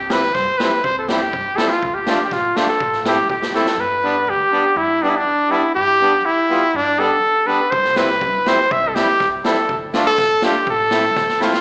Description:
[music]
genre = klezmer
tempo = 122 BPM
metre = 2/4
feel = straight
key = unclear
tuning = A4 = 440 Hz
[part]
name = clear cornet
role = melody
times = 0.0-11.6 s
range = D4 to E5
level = -16 LUFS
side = equal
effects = slapback echo
[part]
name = upright bass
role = bass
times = 0.0-11.3 s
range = A1 to G2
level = -35 LUFS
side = equal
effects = none
[part]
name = accordion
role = accompaniment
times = 0.1-11.5 s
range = G3 to F4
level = -21 LUFS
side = equal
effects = slapback echo
[part]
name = street-band drum kit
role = drums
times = 0.1-3.8, 7.7-11.6 s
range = kick drum, snare drum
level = -24 LUFS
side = equal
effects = none
[sound]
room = moderate lush hall reverb, RT60 2.4 s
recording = live gig heard through the venue's PA, club reverb, small speaker sound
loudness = -14 LUFS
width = side -32 dB against mid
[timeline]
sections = 0.0-3.8 A section; 3.8-11.6 A section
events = drum fill 3.5, 11.2-11.6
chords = 0.0 C; 1.8 Dm; 2.8 Am; 3.8 G; 7.7 C; 9.7 Dm; 10.7 Am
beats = 0.35 | 0.84 1.33 | 1.82 2.31 | 2.80 3.29 | 3.79 4.28 | 4.77 5.26 | 5.75 6.25 | 6.74 7.23 | 7.72 8.22 | 8.71 9.20 | 9.69 10.19 | 10.68 11.17

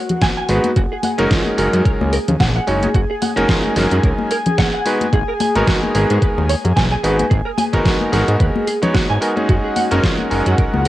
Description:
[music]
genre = nu-disco, nu disco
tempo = 110 BPM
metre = 4/4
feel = swing 56% on 16ths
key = F# major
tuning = A4 = 440 Hz
[part]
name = lush unison pad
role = sustained chords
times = 0.0-10.9 s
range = F#4 to G#5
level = -24 LUFS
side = equal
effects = chorus, sidechain pumping, cassette tape
[part]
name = pop drum kit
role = drums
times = 0.1-10.9 s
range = hi-hat, snare drum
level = -23 LUFS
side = equal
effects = overdrive, cassette tape
[part]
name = congas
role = percussion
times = 0.1-10.8 s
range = none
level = -24 LUFS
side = left 4 dB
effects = none
[part]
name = direct-recorded clean electric guitar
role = riff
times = 0.2-10.9 s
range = C#4 to G#5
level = -24 LUFS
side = right 3 dB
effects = ensemble chorus, cassette tape, tape echo
[part]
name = electronic kick drum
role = drums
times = 0.2-10.7 s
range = none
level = -18 LUFS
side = equal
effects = overdrive, cassette tape
[part]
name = bright electric grand piano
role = accompaniment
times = 0.5-10.8 s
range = F#3 to C#5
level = -20 LUFS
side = equal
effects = sidechain pumping, cassette tape, tape echo
[part]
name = fat analog bass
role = bass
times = 0.5-10.9 s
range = F#1 to G#2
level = -18 LUFS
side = equal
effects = none
[sound]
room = light reverb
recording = home recording on cassette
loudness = -14 LUFS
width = side -15 dB against mid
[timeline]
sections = 0.0-10.9 A section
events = none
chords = 0.0 G#m7; 0.8 F#6; 4.9 G#m7; 9.5 F#6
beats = 0.22 | 0.77 1.31 1.86 2.40 | 2.95 3.49 4.04 4.58 | 5.13 5.67 6.22 6.77 | 7.31 7.86 8.40 8.95 | 9.49 10.04 10.58

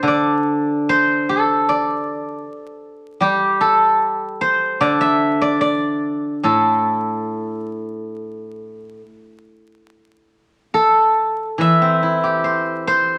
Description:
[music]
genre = chinese traditional, Chinese solo plucked strings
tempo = 67-77 BPM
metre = 4/4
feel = rubato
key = A yu mode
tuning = A4 = 440 Hz
[part]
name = steel-string zither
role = solo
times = 0.0-13.2 s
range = A2 to E5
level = -18 LUFS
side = equal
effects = none
[sound]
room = moderate large studio reverb, RT60 1.0 s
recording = vinyl crackle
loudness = -18 LUFS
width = mono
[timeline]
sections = 0.0-9.9 A section; 9.9-13.2 B section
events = none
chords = none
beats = | 0.06 0.86 1.66 2.44 | 3.23 4.03 4.83 5.63 | 6.45 7.28 8.12 9.00 | 9.87 10.73 11.59 12.43

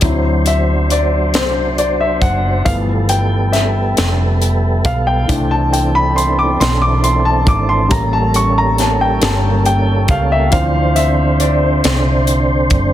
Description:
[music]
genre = slow gospel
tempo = 46 BPM (dotted quarters)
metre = 6/8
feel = straight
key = unclear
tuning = A4 = 440 Hz
[part]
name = warm baby grand piano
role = accompaniment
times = 0.0-12.9 s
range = E3 to D6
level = -17 LUFS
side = left 2 dB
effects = none
[part]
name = tonewheel organ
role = sustained chords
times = 0.0-12.9 s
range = D3 to C5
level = -19 LUFS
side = right 2 dB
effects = chorus vibrato, stopped rotary speaker
[part]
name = hollow-body short-scale fingered electric bass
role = bass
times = 0.0-12.9 s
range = F1 to D2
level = -16 LUFS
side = equal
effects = none
[part]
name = crisp fusion drum kit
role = drums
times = 0.0-12.9 s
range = hi-hat, kick drum, snare drum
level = -18 LUFS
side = equal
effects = none
[sound]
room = light reverb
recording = dense, heavily limited modern master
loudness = -12 LUFS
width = side -12 dB against mid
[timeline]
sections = 0.0-12.9 A section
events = grand piano solo 0.0-12.9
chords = 0.0 D9; 2.7 G13; 5.3 C69; 7.9 A7b9; 10.5 Dm9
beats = | 0.03 1.34 | 2.66 3.97 | 5.29 6.60 | 7.91 9.22 | 10.53 11.85

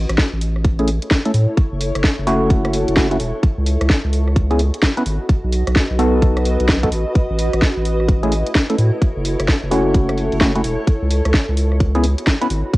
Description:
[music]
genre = UK garage, two-step garage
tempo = 129 BPM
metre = 4/4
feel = swing 63% on 16ths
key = F# dorian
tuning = A4 = 440 Hz
[part]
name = saturated sub bass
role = bass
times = 0.0-12.6 s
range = E1 to A2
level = -18 LUFS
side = equal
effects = none
[part]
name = granular cloud pad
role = texture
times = 0.0-12.8 s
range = E4 to D#5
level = -25 LUFS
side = equal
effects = built-in reverb, sidechain pumping
[part]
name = garage drum kit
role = drums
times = 0.1-12.8 s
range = hi-hat, rim click, snare drum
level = -21 LUFS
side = equal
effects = overdrive, studio ambience, cassette tape
[part]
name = electronic kick drum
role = drums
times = 0.2-12.8 s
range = none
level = -15 LUFS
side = equal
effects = studio ambience, cassette tape
[part]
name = percussive organ stab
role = stabs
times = 0.8-12.5 s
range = A3 to B4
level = -19 LUFS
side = equal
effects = chorus, phaser, analog delay
[sound]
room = light reverb, digital ambience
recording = home recording on cassette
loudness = -15 LUFS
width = side -19 dB against mid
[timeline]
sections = 0.0-12.8 A section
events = none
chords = 0.0 Amaj7; 1.6 F#m7; 3.4 C#m7; 5.3 B7; 7.2 A; 9.0 F#m7; 10.9 C#m7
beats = 0.18 0.64 1.11 | 1.57 2.04 2.50 2.97 | 3.43 3.90 4.36 4.83 | 5.29 5.76 6.22 6.69 | 7.15 7.62 8.08 8.55 | 9.01 9.48 9.94 10.41 | 10.88 11.34 11.80 12.27 | 12.73

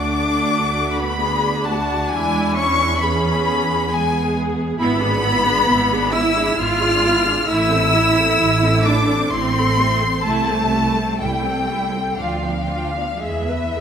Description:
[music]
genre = classical, slow romantic movement for string orchestra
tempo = 57-68 BPM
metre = 3/4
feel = rubato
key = A minor from 4.8 s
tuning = A4 = 440 Hz
[part]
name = rich chamber violin section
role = melody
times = 0.0-13.8 s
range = E5 to F6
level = -22 LUFS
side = left 4 dB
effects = none
[part]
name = clear chamber violin section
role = second line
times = 0.0-13.8 s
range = E5 to F6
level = -24 LUFS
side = left 3 dB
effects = none
[part]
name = rich chamber viola section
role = accompaniment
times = 0.0-13.8 s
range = G#3 to B4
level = -24 LUFS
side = right 1 dB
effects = none
[part]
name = clear studio cello section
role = bass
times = 0.0-13.8 s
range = E3 to F4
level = -22 LUFS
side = right 2 dB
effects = none
[part]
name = rich chamber double bass section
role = bass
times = 0.0-13.8 s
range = G#1 to E2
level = -23 LUFS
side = right 2 dB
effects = none
[sound]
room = moderate scoring stage reverb, RT60 1.8 s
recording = none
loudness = -16 LUFS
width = side -8 dB against mid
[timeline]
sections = 0.0-13.8 A section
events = none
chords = 0.0 D; 2.1 E; 4.8 E7/G#; 7.5 Am; 10.3 Am/C; 12.2 Bdim/D; 13.2 E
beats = 0.29 1.20 | 2.11 3.01 3.90 | 4.80 5.69 6.59 | 7.49 8.40 9.32 | 10.26 11.21 12.19 | 13.22

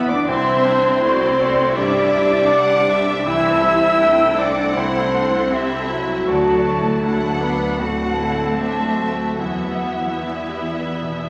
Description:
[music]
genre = cinematic, emotional film score for orchestra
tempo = 79 BPM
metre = 4/4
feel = uneven beats, rubato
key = unclear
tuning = A4 = 439 Hz
[part]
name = clear clarinet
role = second line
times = 0.0-11.3 s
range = G3 to G4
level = -29 LUFS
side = equal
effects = none
[part]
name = mellow large flute ensemble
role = second line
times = 0.0-11.3 s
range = E5 to E6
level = -27 LUFS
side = equal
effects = none
[part]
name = rich symphonic violin section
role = second line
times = 0.0-11.3 s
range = E5 to E6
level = -33 LUFS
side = equal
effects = none
[part]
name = felt-muted upright piano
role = accompaniment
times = 0.0-11.3 s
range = C2 to E5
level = -32 LUFS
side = equal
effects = none
[part]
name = mellow French horn section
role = sustained chords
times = 0.0-11.3 s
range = E4 to E5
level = -23 LUFS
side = equal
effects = none
[part]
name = concert harp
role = arpeggios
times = 0.0-11.3 s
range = C3 to E5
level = -34 LUFS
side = equal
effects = none
[part]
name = warm symphonic cello section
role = bass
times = 0.0-11.3 s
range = E3 to E4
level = -27 LUFS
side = equal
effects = none
[part]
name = warm studio violin section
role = melody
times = 0.3-11.3 s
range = D5 to G5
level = -31 LUFS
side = equal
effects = none
[part]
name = rich symphonic viola section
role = accompaniment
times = 0.3-11.3 s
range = E3 to F#4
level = -27 LUFS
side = equal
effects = none
[part]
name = rich symphonic double bass section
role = bass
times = 0.3-11.3 s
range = C2 to E2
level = -32 LUFS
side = equal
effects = none
[sound]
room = wet concert hall reverb, RT60 2.2 s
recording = vinyl crackle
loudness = -18 LUFS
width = mono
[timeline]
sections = 0.0-11.3 A section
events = none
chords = 0.3 Cadd9; 6.3 Dadd9; 9.4 Em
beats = | 0.28 1.03 1.77 2.52 | 3.26 4.00 4.76 5.52 | 6.28 7.03 7.79 8.58 | 9.39 10.21 11.02

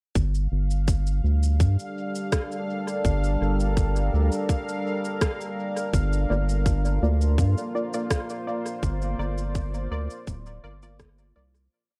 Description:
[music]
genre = ambient dub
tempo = 83 BPM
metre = 4/4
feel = straight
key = G minor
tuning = A4 = 440 Hz
[part]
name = deep dark ambient pad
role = sustained chords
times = 1.2-11.7 s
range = G3 to D5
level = -33 LUFS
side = equal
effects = chorus, built-in reverb
[part]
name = round analog bass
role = bass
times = 0.2-11.7 s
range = D1 to G2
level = -26 LUFS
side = equal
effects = none
[part]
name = electronic kick drum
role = drums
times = 0.2-11.2 s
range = none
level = -27 LUFS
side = equal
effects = none
[part]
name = electronic shaker and rim click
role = drums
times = 0.2-11.7 s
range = none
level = -36 LUFS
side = equal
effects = dub echo
[part]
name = bubbling stepped-filter texture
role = texture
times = 0.2-11.7 s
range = F5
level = -41 LUFS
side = equal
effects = chorus, built-in reverb
[part]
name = filtered dub chord stab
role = stabs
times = 6.3-11.5 s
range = Bb3 to D5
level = -35 LUFS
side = equal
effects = chorus, dub echo
[sound]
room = little or no reverb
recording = echo-heavy mix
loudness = -25 LUFS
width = mono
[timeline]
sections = 0.2-11.7 groove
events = fade-out 7.9-11.7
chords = 0.2 Gm7; 5.9 Bb/G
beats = | 0.16 0.88 1.60 2.33 | 3.05 3.77 4.50 5.22 | 5.94 6.66 7.39 8.11 | 8.83 9.55 10.28 11.00

